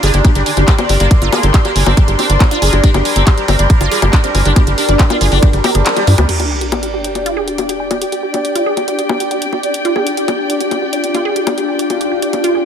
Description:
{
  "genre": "psychedelic trance",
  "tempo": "139 BPM",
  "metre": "4/4",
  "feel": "straight",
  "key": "G minor",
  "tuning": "A4 = 438 Hz",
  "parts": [
    { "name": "sitar", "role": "melody", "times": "0.0-6.2 s", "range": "D3 to D4", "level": "-19 LUFS", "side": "left 2 dB", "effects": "phaser, sidechain pumping, ping-pong delay" },
    { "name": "bubbling stepped-filter texture", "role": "sustained chords", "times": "0.0-12.7 s", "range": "D4 to D5", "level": "-20 LUFS", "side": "equal", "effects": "chorus, built-in reverb, sidechain pumping" },
    { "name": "wide unison pluck", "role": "riff", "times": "0.0-12.6 s", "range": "F4 to Ab5", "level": "-20 LUFS", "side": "right 2 dB", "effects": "auto-pan, sidechain pumping, ping-pong delay" },
    { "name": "tight sequencer bass", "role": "bass", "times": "0.0-6.3 s", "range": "G1 to G2", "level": "-13 LUFS", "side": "equal", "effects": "none" },
    { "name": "garage drum kit", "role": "drums", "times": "0.0-12.5 s", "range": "bongos, crash cymbal, handclaps, hi-hat, ride cymbal", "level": "-19 LUFS", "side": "left 3 dB", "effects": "studio reverb" },
    { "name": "muted studio string section", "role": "texture", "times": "0.0-12.7 s", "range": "G4 to C6", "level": "-22 LUFS", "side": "left 1 dB", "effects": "sidechain pumping" },
    { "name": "electronic kick drum", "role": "drums", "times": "0.2-5.5 s", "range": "none", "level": "-10 LUFS", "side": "equal", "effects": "studio reverb" },
    { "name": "vowel-sweep wobble bass", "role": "second line", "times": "0.8-4.6 s", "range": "G3 to C4", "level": "-30 LUFS", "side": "left 5 dB", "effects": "none" },
    { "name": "zap and sub drop", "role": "sound effects", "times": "6.2-8.0 s", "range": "none", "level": "-23 LUFS", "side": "equal", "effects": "none" }
  ],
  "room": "light reverb, digital ambience",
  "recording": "none",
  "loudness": "-11 LUFS",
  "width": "side -8 dB against mid",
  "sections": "0.0-6.3 A section; 6.3-12.7 B section",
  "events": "drop 0.0-6.3; kick drops out 5.9-6.3; band accent 5.9; impact 6.3-8.0; filter sweep on synth texture 6.3-12.7",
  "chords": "0.0 G5"
}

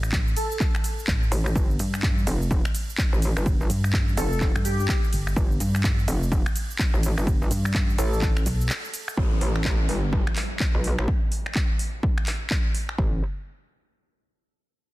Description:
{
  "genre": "bass house",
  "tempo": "126 BPM",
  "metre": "4/4",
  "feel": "swing 61% on 16ths",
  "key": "unclear",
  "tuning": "A4 = 438 Hz",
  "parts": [
    { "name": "pulsing pluck wobble bass", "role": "bass", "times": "0.0-8.7 s", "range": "G1 to G2", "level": "-25 LUFS", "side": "equal", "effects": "chorus, tube saturation, sidechain pumping" },
    { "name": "house drum kit", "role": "drums", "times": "0.0-13.0 s", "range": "cabasa, finger snaps, handclaps, hi-hat, ride cymbal", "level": "-31 LUFS", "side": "equal", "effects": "overdrive" },
    { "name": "electronic kick drum", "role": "drums", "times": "0.1-13.1 s", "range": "none", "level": "-24 LUFS", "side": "equal", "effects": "overdrive" },
    { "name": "airy dreamy lead", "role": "melody", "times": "0.4-0.6, 4.2-4.9, 8.0-8.2 s", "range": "G4 to A4", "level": "-33 LUFS", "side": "equal", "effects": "chorus, dub echo" },
    { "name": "metallic wobble bass", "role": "bass", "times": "1.3-13.2 s", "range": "F1 to B1", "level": "-25 LUFS", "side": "equal", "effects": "chorus, overdrive, sidechain pumping" },
    { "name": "downlifter", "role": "sound effects", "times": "9.2-13.0 s", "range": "none", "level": "-37 LUFS", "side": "right 1 dB", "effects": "none" }
  ],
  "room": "little or no reverb",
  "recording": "dense, heavily limited modern master",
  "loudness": "-22 LUFS",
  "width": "side -18 dB against mid",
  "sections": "0.0-9.2 A section; 9.2-13.0 B section; 13.0-14.9 C section",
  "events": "drop 0.0-9.2; break 8.7-9.2",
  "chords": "0.0 N.C.; 9.2 Gsus2; 13.0 N.C."
}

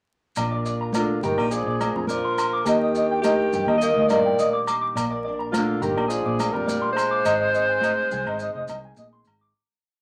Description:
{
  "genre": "highlife guitar band",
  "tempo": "104 BPM",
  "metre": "4/4",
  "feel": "straight",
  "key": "Bb mixolydian",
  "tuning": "A4 = 441 Hz",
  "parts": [
    { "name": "fingerpicked steel-string acoustic guitar", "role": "accompaniment", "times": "0.4-9.5 s", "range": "Ab2 to Bb4", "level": "-36 LUFS", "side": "equal", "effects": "none" },
    { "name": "electric guitar through a small old amp", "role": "arpeggios", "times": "0.4-9.5 s", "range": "D5 to D6", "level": "-28 LUFS", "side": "equal", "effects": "none" },
    { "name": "fingered electric bass", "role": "bass", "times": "0.4-9.5 s", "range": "F1 to G2", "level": "-32 LUFS", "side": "equal", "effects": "none" },
    { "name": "agogo bells", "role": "percussion", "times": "0.4-9.4 s", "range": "none", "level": "-34 LUFS", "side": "equal", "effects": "none" },
    { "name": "congas", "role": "percussion", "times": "0.4-9.3 s", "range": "none", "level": "-33 LUFS", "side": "equal", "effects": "none" },
    { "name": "maracas", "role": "percussion", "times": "0.4-9.4 s", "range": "none", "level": "-41 LUFS", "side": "equal", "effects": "none" },
    { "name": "warm alto saxophone", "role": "melody", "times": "1.0-8.9 s", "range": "F4 to Eb5", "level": "-27 LUFS", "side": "equal", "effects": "none" },
    { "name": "warm tenor saxophone", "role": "second line", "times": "1.0-8.9 s", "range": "D3 to Bb3", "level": "-30 LUFS", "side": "equal", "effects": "none" }
  ],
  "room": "wet small room reverb, RT60 0.6 s",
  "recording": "vinyl crackle",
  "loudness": "-23 LUFS",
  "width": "mono",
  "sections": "0.4-9.5 A section",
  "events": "fade-out 7.3-9.5",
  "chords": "0.4 Bb; 2.7 Ebmaj7; 5.0 Bb; 7.3 Ab"
}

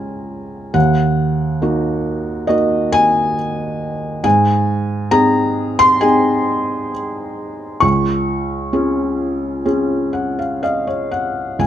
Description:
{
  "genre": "classical, lyrical solo piano",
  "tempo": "61-70 BPM",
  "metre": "4/4",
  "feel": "rubato",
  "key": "Db major",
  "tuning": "A4 = 436 Hz",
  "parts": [
    { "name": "felt-muted upright piano", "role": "solo", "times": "0.0-11.7 s", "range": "Db2 to Db6", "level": "-15 LUFS", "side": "equal", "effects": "none" }
  ],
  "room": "light reverb",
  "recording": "close, detailed microphones",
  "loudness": "-15 LUFS",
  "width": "side -10 dB against mid",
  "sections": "0.0-11.6 A section",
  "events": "felt piano fill 9.7-11.6",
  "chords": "0.0 Db; 0.7 Ebm; 4.2 Ab; 7.8 Db"
}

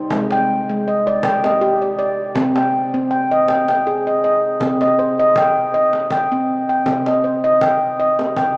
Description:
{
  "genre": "world meditative, meditative tuned percussion",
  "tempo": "80 BPM",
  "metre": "3/4",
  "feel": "swing 53% on 16ths",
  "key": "C hirajoshi",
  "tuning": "A4 = 440 Hz",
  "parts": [
    { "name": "handpan", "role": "arpeggios", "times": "0.0-8.6 s", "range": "C3 to G5", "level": "-14 LUFS", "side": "equal", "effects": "none" },
    { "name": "cajon", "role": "percussion", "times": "0.1-8.6 s", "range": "none", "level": "-27 LUFS", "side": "equal", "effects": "none" }
  ],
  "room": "wet cathedral reverb, RT60 6.1 s",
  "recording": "cassette tape, small speaker sound",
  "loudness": "-14 LUFS",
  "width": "side -28 dB against mid",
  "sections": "0.0-4.6 A section; 4.6-8.6 B section",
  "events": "none",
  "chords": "0.1 Ab/C; 2.4 Cm"
}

